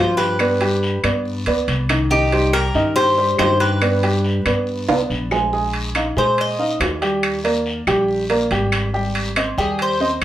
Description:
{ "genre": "latin, Cuban son and guajira", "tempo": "140 BPM", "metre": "4/4", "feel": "straight", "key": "unclear", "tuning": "A4 = 440 Hz", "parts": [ { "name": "Cuban tres", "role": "melody", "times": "0.0-6.8, 9.6-10.2 s", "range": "G4 to Eb5", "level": "-20 LUFS", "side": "left 1 dB", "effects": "plate reverb" }, { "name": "nylon-string guitar", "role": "second line", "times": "0.0-4.8 s", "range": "Eb4 to G4", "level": "-26 LUFS", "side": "left 2 dB", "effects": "none" }, { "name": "dark baby grand piano", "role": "arpeggios", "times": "0.0-10.2 s", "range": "Eb3 to Ab5", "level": "-20 LUFS", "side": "right 1 dB", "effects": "none" }, { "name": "upright bass", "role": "bass", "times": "0.0-10.2 s", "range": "Ab1 to Bb2", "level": "-23 LUFS", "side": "equal", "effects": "none" }, { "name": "guiro", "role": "percussion", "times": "0.2-10.2 s", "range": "none", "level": "-31 LUFS", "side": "left 2 dB", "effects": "none" }, { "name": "timbales", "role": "percussion", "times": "0.2-10.2 s", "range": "none", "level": "-24 LUFS", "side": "right 2 dB", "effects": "none" }, { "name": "claves", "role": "percussion", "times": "0.4-10.2 s", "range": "none", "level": "-27 LUFS", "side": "left 2 dB", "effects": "none" } ], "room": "wet studio ambience, RT60 0.5 s", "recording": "heard from further back in the room", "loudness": "-16 LUFS", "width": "side -12 dB against mid", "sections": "0.0-5.5 A section; 5.5-10.2 B section", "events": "drum fill 4.9-5.5; Cuban tres solo 5.5-10.2", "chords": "0.4 G; 2.1 Cm; 3.8 G; 5.5 Bb7sus4; 7.2 Ebmaj7; 8.9 Abmaj7" }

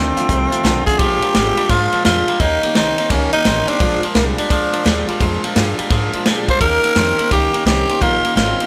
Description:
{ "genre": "rockabilly", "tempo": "171 BPM", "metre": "4/4", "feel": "swing 65% on 8ths", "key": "Bb mixolydian", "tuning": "A4 = 445 Hz", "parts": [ { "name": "growling tenor saxophone", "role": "melody", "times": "0.0-8.7 s", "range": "Bb3 to C5", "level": "-19 LUFS", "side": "equal", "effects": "none" }, { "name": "picked steel-string acoustic guitar", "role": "accompaniment", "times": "0.0-8.7 s", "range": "F2 to G4", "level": "-25 LUFS", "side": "equal", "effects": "none" }, { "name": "twangy electric guitar", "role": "riff", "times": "0.0-8.7 s", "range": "F2 to C4", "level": "-25 LUFS", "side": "equal", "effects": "none" }, { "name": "upright bass", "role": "bass", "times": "0.0-8.6 s", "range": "Ab1 to Bb2", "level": "-25 LUFS", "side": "equal", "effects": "none" }, { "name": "vintage drum kit", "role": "drums", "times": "0.2-8.7 s", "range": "hi-hat, kick drum, ride cymbal, snare drum", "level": "-22 LUFS", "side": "equal", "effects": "none" } ], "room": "light reverb", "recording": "none", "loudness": "-16 LUFS", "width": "mono", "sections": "1.0-8.7 A section", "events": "none", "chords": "0.0 F7; 1.0 Bb7; 2.4 Eb7; 3.8 Bb7; 6.6 Eb7" }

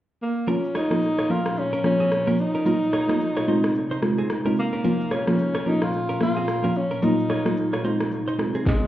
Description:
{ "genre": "afrobeats", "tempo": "110 BPM", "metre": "4/4", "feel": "swing 58% on 16ths", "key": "Bb minor", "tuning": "A4 = 442 Hz", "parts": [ { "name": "breathy tenor saxophone", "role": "melody", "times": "0.2-8.9 s", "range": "Ab3 to F4", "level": "-25 LUFS", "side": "equal", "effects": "none" }, { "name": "mallet-like synth pluck", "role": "accompaniment", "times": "0.5-8.6 s", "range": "F3 to F4", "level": "-24 LUFS", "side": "equal", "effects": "chorus, phaser" }, { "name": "glassy FM pad", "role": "sustained chords", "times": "0.9-8.7 s", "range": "Bb2 to F4", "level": "-30 LUFS", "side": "equal", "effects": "ensemble chorus, built-in reverb, sidechain pumping" }, { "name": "direct-recorded clean electric guitar", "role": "riff", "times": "0.5-8.6 s", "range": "C4 to Db5", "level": "-32 LUFS", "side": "right 2 dB", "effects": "digital delay" }, { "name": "afro-pop drum kit", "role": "drums", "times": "0.5-8.8 s", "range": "kick drum, rim click, shaker, snare drum", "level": "-29 LUFS", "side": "equal", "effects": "none" } ], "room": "moderate lush hall reverb, RT60 1.5 s", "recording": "heard muffled through a wall, club reverb, EQ", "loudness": "-20 LUFS", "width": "side -13 dB against mid", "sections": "0.5-8.9 A section", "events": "none", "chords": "0.5 Bbm; 2.7 Ebmadd9; 3.5 Fm7; 4.8 Bbm; 7.0 Ebmadd9; 7.8 Fm7" }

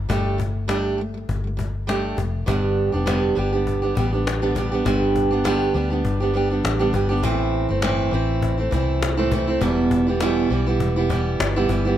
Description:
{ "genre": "acoustic pop", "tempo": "101 BPM", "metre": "4/4", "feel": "swing 55% on 16ths", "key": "unclear", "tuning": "A4 = 441 Hz", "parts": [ { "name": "picked steel-string acoustic guitar", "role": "accompaniment", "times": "0.0-12.0 s", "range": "E2 to G4", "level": "-21 LUFS", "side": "right 2 dB", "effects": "none" }, { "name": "vintage muted fingered electric bass", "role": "bass", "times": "0.0-12.0 s", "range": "E1 to D2", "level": "-24 LUFS", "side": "left 1 dB", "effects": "none" }, { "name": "cajon", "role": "drums", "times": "0.1-11.9 s", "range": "none", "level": "-28 LUFS", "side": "left 4 dB", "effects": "none" } ], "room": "little or no reverb", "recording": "close, detailed microphones", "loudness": "-19 LUFS", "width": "side -11 dB against mid", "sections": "0.0-2.5 A section; 2.5-12.0 B section", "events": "none", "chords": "0.0 Gsus2; 2.5 G; 7.2 Am; 9.6 Em" }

